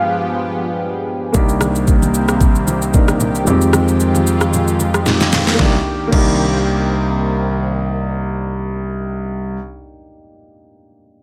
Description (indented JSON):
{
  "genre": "amapiano",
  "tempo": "113 BPM",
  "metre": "4/4",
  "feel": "swing 55% on 16ths",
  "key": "C minor",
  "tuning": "A4 = 439 Hz",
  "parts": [
    { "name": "soft octave-layered synth lead", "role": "melody", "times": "0.0-0.8 s", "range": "F5", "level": "-24 LUFS", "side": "equal", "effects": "chorus, phaser, delay" },
    { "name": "warm baby grand piano", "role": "accompaniment", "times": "0.0-11.2 s", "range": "G2 to Bb4", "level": "-23 LUFS", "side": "equal", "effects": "low-pass filter" },
    { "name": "lush unison pad", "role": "sustained chords", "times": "0.0-9.0 s", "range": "Eb3 to Ab4", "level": "-25 LUFS", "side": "equal", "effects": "chorus, phaser, low-pass filter" },
    { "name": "warm concert grand piano", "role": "bass", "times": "1.3-9.6 s", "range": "C2 to F2", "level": "-20 LUFS", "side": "equal", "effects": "none" },
    { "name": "smooth R&B drum kit", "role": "drums", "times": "1.3-6.3 s", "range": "crash cymbal, kick drum, rim click, shaker, snare drum", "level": "-19 LUFS", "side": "equal", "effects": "none" },
    { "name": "congas", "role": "percussion", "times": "1.3-6.3 s", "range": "none", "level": "-25 LUFS", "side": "equal", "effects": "none" }
  ],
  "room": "light reverb, digital ambience",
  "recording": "none",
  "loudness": "-16 LUFS",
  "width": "mono",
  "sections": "0.0-1.3 A section; 1.3-5.6 B section; 5.6-9.8 C section",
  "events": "break 0.0-1.3; filter sweep 1.3-5.6; drum fill 5.1-5.6",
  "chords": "0.0 G7b9; 1.3 Cm7; 3.5 Fm9; 5.6 Cm7"
}